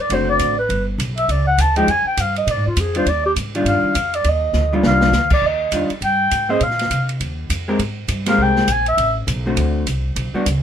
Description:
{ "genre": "jazz, small-group swing and bop", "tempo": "203 BPM", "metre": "4/4", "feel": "swing 61% on 8ths", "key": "Eb major", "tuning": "A4 = 439 Hz", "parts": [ { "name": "breathy clarinet", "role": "melody", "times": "0.0-9.1 s", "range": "F4 to A5", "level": "-18 LUFS", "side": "equal", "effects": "none" }, { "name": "vintage hollow-body jazz guitar", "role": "accompaniment", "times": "0.1-10.5 s", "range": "D3 to C5", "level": "-19 LUFS", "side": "left 1 dB", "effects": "none" }, { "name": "upright bass", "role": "bass", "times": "0.1-10.6 s", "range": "F#1 to C3", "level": "-21 LUFS", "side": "equal", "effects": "none" }, { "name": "open jazz drum kit", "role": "drums", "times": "0.1-10.5 s", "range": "crash cymbal, hi-hat, kick drum, ride cymbal, snare drum", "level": "-24 LUFS", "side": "equal", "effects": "none" } ], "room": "light reverb", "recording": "minimal, uncompressed stereo recording", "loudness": "-16 LUFS", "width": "side -9 dB against mid", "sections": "0.0-5.4 A section; 5.4-10.6 A section", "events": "clarinet solo 0.0-10.6; drum fill 4.5-5.1", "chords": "0.1 D7; 0.7 G; 1.9 Fsus2; 2.5 Bb7; 3.1 Ebmaj9; 6.6 Bbsus2; 7.2 Eb69; 7.8 Abmaj9; 9.0 Amadd9; 9.6 D7", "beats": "0.10 0.40 | 0.70 0.99 1.29 1.58 | 1.88 2.18 2.47 2.77 | 3.06 3.36 3.66 3.95 | 4.25 4.54 4.84 5.14 | 5.43 5.73 6.02 6.32 | 6.62 6.91 7.21 7.50 | 7.80 8.09 8.39 8.69 | 8.98 9.28 9.57 9.87 | 10.16 10.46" }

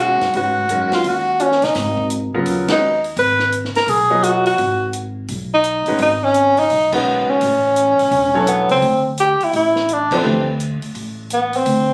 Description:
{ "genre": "modal jazz", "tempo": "170 BPM", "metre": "4/4", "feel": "swing 64% on 8ths", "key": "unclear", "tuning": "A4 = 440 Hz", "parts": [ { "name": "mellow tenor saxophone", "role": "melody", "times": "0.0-11.9 s", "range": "B3 to B4", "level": "-17 LUFS", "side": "equal", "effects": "none" }, { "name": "clear concert grand piano", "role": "accompaniment", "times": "0.0-10.4 s", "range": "C#3 to D#5", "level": "-23 LUFS", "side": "equal", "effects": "none" }, { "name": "upright bass", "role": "bass", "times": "0.0-11.9 s", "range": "E1 to B2", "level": "-28 LUFS", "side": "equal", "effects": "none" }, { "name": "compact cocktail drum kit", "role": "drums", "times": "0.2-11.8 s", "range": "crash cymbal, hi-hat, kick drum, ride cymbal, snare drum", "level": "-31 LUFS", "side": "equal", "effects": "none" } ], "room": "light reverb", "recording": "recorded on a phone in the room, club reverb", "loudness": "-17 LUFS", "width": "mono", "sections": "0.0-8.8 A section; 8.8-11.9 B section", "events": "band accent 2.6, 6.9, 10.1", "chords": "0.0 G#m11; 7.4 A69; 8.8 D7(no3)", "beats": "| 0.34 0.69 1.05 1.40 | 1.75 2.11 2.46 2.82 | 3.17 3.52 3.88 4.23 | 4.58 4.94 5.29 5.64 | 6.00 6.35 6.70 7.06 | 7.41 7.76 8.12 8.47 | 8.83 9.18 9.53 9.89 | 10.24 10.60 10.95 11.30 | 11.66" }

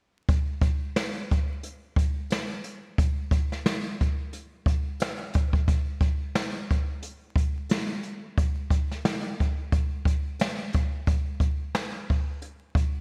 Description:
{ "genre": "hip hop", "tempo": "89 BPM", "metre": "4/4", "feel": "swing 57% on 16ths", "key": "none", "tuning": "none", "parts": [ { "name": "jazz brush drum kit", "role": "drums", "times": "0.3-12.9 s", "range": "hi-hat, kick drum, snare drum", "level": "-27 LUFS", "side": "equal", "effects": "vintage 12-bit sampler grit, gated reverb" } ], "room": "light reverb", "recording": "bright 1980s-style digital production, vinyl crackle", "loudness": "-28 LUFS", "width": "mono", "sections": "0.3-13.0 A section", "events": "none", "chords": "none", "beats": "| 0.29 0.96 1.63 2.31 | 2.98 3.66 4.33 5.00 | 5.68 6.35 7.03 7.70 | 8.38 9.05 9.72 10.40 | 11.07 11.75 12.42" }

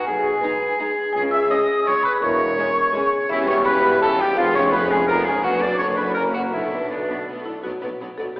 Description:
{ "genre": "cinematic, playful, whimsical film cue", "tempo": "167 BPM", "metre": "3/4", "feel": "straight", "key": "B minor from 3.3 s", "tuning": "A4 = 440 Hz", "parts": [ { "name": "buzzing marimba with medium hard mallets", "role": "melody", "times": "0.0-8.4 s", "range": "E4 to E6", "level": "-25 LUFS", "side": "left 1 dB", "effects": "none" }, { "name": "bright oboe", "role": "second line", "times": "0.0-7.3 s", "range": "D4 to E5", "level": "-25 LUFS", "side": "equal", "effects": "none" }, { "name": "mellow French horn section", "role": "sustained chords", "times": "0.0-7.4 s", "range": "G4 to B4", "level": "-23 LUFS", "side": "left 1 dB", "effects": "none" }, { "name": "flute section", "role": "second line", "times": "0.1-7.3 s", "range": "D5 to E6", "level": "-26 LUFS", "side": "equal", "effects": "none" }, { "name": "mellow clarinet", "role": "second line", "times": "0.1-7.3 s", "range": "D4 to E5", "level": "-28 LUFS", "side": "equal", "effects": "none" }, { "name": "rich chamber cello section", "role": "bass", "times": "0.1-8.4 s", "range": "E2 to C#3", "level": "-32 LUFS", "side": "equal", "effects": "none" }, { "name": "warm chamber double bass section", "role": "bass", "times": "0.1-8.4 s", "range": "E1 to C#2", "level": "-36 LUFS", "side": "equal", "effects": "none" }, { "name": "warm tuba", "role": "bass", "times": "0.1-8.4 s", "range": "E1 to C#2", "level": "-31 LUFS", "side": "equal", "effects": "none" }, { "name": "rich symphonic violin section", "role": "melody", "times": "0.4-8.4 s", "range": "C#4 to D5", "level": "-41 LUFS", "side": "left 1 dB", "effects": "none" }, { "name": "rich chamber violin section", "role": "second line", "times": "0.4-8.4 s", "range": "A#3 to D#4", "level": "-30 LUFS", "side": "equal", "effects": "none" }, { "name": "rich chamber viola section", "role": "accompaniment", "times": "0.4-8.3 s", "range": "D3 to B3", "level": "-32 LUFS", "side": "equal", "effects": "none" } ], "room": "wet scoring stage reverb, RT60 2.0 s", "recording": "heard from further back in the room, AM radio sound", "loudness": "-17 LUFS", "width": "side -22 dB against mid", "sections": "0.0-7.6 A section", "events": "none", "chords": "0.1 G#m/B; 1.1 C#m; 2.2 C#m/E; 3.3 C#m7b5/E; 4.4 C#7/E#; 5.4 Bm/F#; 6.2 F#; 6.5 Bm", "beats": "| 0.07 0.43 0.79 | 1.15 1.51 1.87 | 2.23 2.58 2.94 | 3.30 3.66 4.02 | 4.37 4.73 5.09 | 5.45 5.81 6.17 | 6.54 6.91 7.28 | 7.64 8.01 8.37" }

